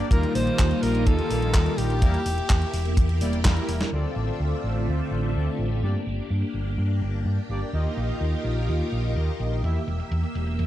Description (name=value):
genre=italo disco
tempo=126 BPM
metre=4/4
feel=straight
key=D minor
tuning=A4 = 439 Hz
part: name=phased string machine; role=sustained chords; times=0.0-10.7 s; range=D3 to E5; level=-31 LUFS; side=equal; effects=ensemble chorus, phaser
part: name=analog synth brass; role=stabs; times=0.0-9.8 s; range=G3 to E5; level=-30 LUFS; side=left 1 dB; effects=chorus, tape echo
part: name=gated 80s digital drum machine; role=drums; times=0.0-10.7 s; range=handclaps, hi-hat, snare drum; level=-31 LUFS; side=equal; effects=gated reverb, gated reverb snare, low-pass filter on hats, low-pass filter on snare, low-pass filter on room
part: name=breathy alto saxophone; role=melody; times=0.1-3.4 s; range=G4 to C5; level=-30 LUFS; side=left 1 dB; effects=tape echo
part: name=overdriven fingered electric bass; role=bass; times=0.1-10.7 s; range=E1 to G2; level=-25 LUFS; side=equal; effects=none
part: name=kick drum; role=drums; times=0.1-3.5 s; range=none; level=-21 LUFS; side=equal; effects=none
room=small room ambience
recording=none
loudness=-22 LUFS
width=side -13 dB against mid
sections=0.0-3.9 A section; 3.9-10.7 B section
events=drum fill 3.4-3.9; band accent 3.8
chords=0.1 Ebadd9; 2.0 Edim; 3.9 Dm7; 5.8 Gm; 7.7 Ebadd9; 9.6 Edim